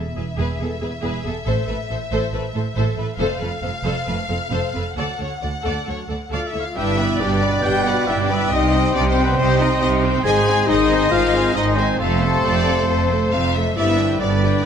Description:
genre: cinematic, heroic adventure film score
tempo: 138 BPM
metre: 4/4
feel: straight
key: unclear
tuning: A4 = 437 Hz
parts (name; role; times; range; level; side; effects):
- warm symphonic violin section; melody; 0.0-14.6 s; A4 to Ab5; -27 LUFS; left 4 dB; none
- rich studio violin section; second line; 0.0-14.6 s; A4 to B5; -28 LUFS; left 4 dB; none
- rich studio cello section; bass; 0.0-14.6 s; D2 to C3; -26 LUFS; right 4 dB; none
- clear symphonic viola section; accompaniment; 0.2-14.6 s; G3 to C5; -27 LUFS; right 1 dB; none
- rich symphonic double bass section; bass; 0.2-14.6 s; E1 to D2; -24 LUFS; right 3 dB; none
- warm French horn section; sustained chords; 0.6-14.6 s; F#3 to C5; -23 LUFS; left 5 dB; none
- clear oboe; second line; 6.3-14.7 s; A4 to Ab5; -28 LUFS; right 1 dB; none
- clear clarinet; second line; 6.8-14.7 s; B4 to C5; -30 LUFS; equal; none
- mellow silver concert flute; second line; 6.8-14.7 s; D5 to G5; -29 LUFS; left 3 dB; none
- mellow trombone section; sustained chords; 6.8-14.7 s; B2 to Ab3; -28 LUFS; right 4 dB; none
- mellow trumpet; stabs; 6.8-14.7 s; B4 to D5; -26 LUFS; equal; none
room: light reverb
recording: close, detailed microphones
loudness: -17 LUFS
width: side -8 dB against mid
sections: 0.0-6.8 A section; 6.8-14.7 B section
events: none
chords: 0.0 E; 1.5 Am; 3.2 F; 5.0 D; 6.8 G; 8.5 Cm; 10.3 Ab; 12.0 F; 13.8 G

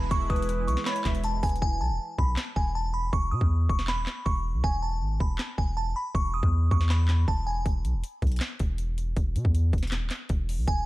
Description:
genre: hip hop, trap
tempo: 159 BPM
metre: 4/4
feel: half-time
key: E major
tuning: A4 = 441 Hz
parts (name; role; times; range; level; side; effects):
- glassy synth bell; melody; 0.0-7.6, 10.7-10.8 s; G#5 to D#6; -32 LUFS; right 1 dB; chorus, low-pass filter
- mellow tine electric piano; accompaniment; 0.0-1.6 s; G#3 to E4; -38 LUFS; right 5 dB; medium stereo tremolo, low-pass filter
- sweeping resonant pad; sustained chords; 0.0-1.6 s; E3 to B4; -38 LUFS; right 6 dB; chorus
- long sustained 808-style bass; bass; 0.0-10.9 s; D#1 to B2; -26 LUFS; equal; none
- trap drum kit; drums; 0.1-10.8 s; handclaps, hi-hat, kick drum, snare drum; -29 LUFS; equal; overdrive
- breathy large pan pipes; second line; 0.3-1.2 s; B4 to E5; -36 LUFS; left 5 dB; tape echo
room: digital ambience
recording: dark, warm production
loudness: -24 LUFS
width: side -18 dB against mid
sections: 0.0-1.6 A section; 1.6-10.9 B section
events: hi-hats muted 1.6-7.7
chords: 0.0 E; 1.6 E5

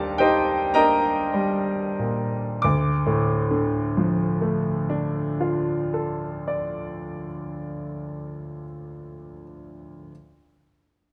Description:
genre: classical, impressionist solo piano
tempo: 29-39 BPM (dotted quarters)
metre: 9/8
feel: rubato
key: unclear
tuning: A4 = 440 Hz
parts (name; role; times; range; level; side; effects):
- clear concert grand piano; solo; 0.0-10.1 s; D2 to D6; -25 LUFS; equal; none
room: moderate concert hall reverb, RT60 1.8 s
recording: close, detailed microphones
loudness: -24 LUFS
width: mono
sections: 0.0-2.6 A section; 2.6-8.0 B section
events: slowing down 0.0-2.6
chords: 0.0 Ebmaj7; 2.6 Dm

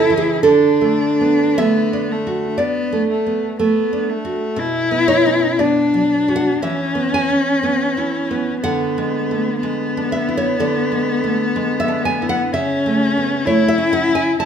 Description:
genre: romantic duo for cello and classical guitar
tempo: 60 BPM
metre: 4/4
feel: uneven beats, rubato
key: unclear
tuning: A4 = 440 Hz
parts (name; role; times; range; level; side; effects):
- rich cello; melody; 0.0-14.5 s; A3 to E4; -18 LUFS; left 4 dB; none
- nylon-string guitar; accompaniment; 0.0-14.5 s; B2 to A5; -18 LUFS; right 4 dB; none
room: moderate recital hall reverb, RT60 1.4 s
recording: minimal, uncompressed stereo recording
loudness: -15 LUFS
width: side -8 dB against mid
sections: 0.0-14.5 A section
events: none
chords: 0.4 D; 4.6 Bm; 6.6 E; 8.6 E7/D; 12.5 A/C#

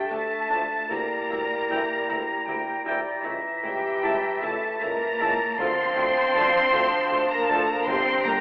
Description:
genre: classical, slow romantic movement for symphony orchestra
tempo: 52 BPM (dotted quarters)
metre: 6/8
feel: rubato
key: D minor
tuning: A4 = 440 Hz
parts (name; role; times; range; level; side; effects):
- rich symphonic violin section; melody; 0.0-8.4 s; G5 to C6; -30 LUFS; equal; none
- bright flute section; second line; 0.0-8.4 s; D5 to Bb5; -32 LUFS; equal; none
- dark clarinet; second line; 0.0-8.4 s; D4 to E4; -39 LUFS; equal; none
- warm oboe; second line; 0.0-8.4 s; A5 to Bb5; -30 LUFS; equal; none
- warm symphonic violin section; second line; 0.0-8.4 s; G5 to C6; -30 LUFS; equal; none
- mellow bassoon; accompaniment; 0.0-8.4 s; E3 to A3; -34 LUFS; equal; none
- warm French horn section; sustained chords; 0.0-8.4 s; G4 to C5; -28 LUFS; equal; none
- warm symphonic cello section; bass; 0.0-8.4 s; G3 to C4; -34 LUFS; equal; none
- rich symphonic viola section; accompaniment; 0.1-8.4 s; G3 to G4; -37 LUFS; equal; none
- clear symphonic double bass section; bass; 0.1-8.3 s; G1 to D2; -43 LUFS; equal; none
- warm tuba; bass; 0.1-8.4 s; G1 to D2; -37 LUFS; equal; none
- clear trombone section; sustained chords; 0.5-7.6 s; E3 to E4; -36 LUFS; equal; none
- clear trumpet; stabs; 0.5-7.6 s; G5 to A5; -29 LUFS; equal; none
- timpani; percussion; 5.6-6.7 s; D3; -45 LUFS; equal; none
room: wet scoring stage reverb, RT60 1.8 s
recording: telephone sound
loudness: -22 LUFS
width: side -23 dB against mid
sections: 0.0-8.4 A section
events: none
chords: 0.0 Dm; 0.9 Em7b5/D; 3.3 A/C#; 5.6 Dm; 7.9 Gm

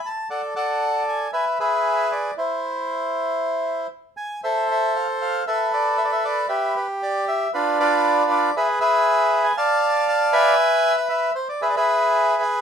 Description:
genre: tango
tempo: 117 BPM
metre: 4/4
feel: rubato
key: A harmonic minor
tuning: A4 = 440 Hz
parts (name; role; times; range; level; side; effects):
- bandoneon; solo; 0.0-12.6 s; D4 to A5; -19 LUFS; equal; none
room: moderate studio reverb, RT60 0.7 s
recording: minimal, uncompressed stereo recording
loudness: -18 LUFS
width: side -7 dB against mid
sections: 0.0-4.4 A section; 4.4-12.6 A section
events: none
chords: 0.3 D; 1.3 E; 2.3 N.C.; 4.4 Am; 5.5 Asus24; 6.5 G6; 7.5 Bdim; 8.5 E; 9.5 Bdim/D; 10.6 E

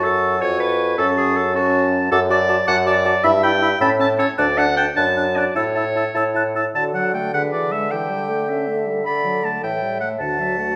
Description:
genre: quick classical-period movement for wind quintet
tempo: 105 BPM (dotted quarters)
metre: 6/8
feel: straight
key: D major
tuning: A4 = 439 Hz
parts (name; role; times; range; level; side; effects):
- mellow hollow concert flute; melody; 0.0-10.8 s; F#4 to F#6; -28 LUFS; equal; none
- clear oboe; second line; 0.0-10.8 s; D5 to B5; -26 LUFS; equal; none
- clear clarinet; accompaniment; 0.0-10.8 s; F#4 to B5; -24 LUFS; equal; none
- warm French horn; accompaniment; 0.0-10.8 s; D3 to F#4; -28 LUFS; equal; none
- mellow bassoon; bass; 0.0-10.8 s; D2 to D3; -24 LUFS; equal; none
room: moderate recital hall reverb, RT60 1.6 s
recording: none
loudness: -19 LUFS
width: mono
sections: 0.0-6.8 A section; 6.8-10.8 B section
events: none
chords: 0.4 C#7/E#; 1.0 F#m; 2.1 D/F#; 3.2 Em/G; 3.8 A; 4.4 D; 5.0 D/F#; 5.6 A; 6.8 D; 7.3 E7/D; 7.9 A7/D; 9.1 D; 9.6 A5; 10.2 D

